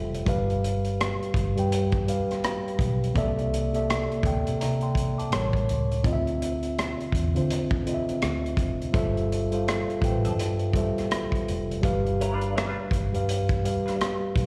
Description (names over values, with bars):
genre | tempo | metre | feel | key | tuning
R&B, neo-soul | 83 BPM | 4/4 | swing 61% on 16ths | unclear | A4 = 438 Hz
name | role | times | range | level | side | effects
mellow tine electric piano | accompaniment | 0.0-14.5 s | A2 to D6 | -30 LUFS | equal | slapback echo
vintage muted fingered electric bass | bass | 0.0-14.5 s | F1 to D3 | -31 LUFS | equal | none
crunchy breakbeat drum kit | drums | 0.1-14.5 s | hi-hat, kick drum, rim click | -31 LUFS | equal | none
clean electric guitar | second line | 10.2-14.0 s | F3 to B4 | -36 LUFS | equal | wah, tremolo, slapback echo
room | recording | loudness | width
light reverb, small room ambience | live gig heard through the venue's PA, recital hall reverb | -26 LUFS | mono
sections
0.0-14.5 A section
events
none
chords
0.3 G7; 3.2 C13; 5.3 A7b9; 6.0 Dm9; 8.9 G13sus4; 11.8 G7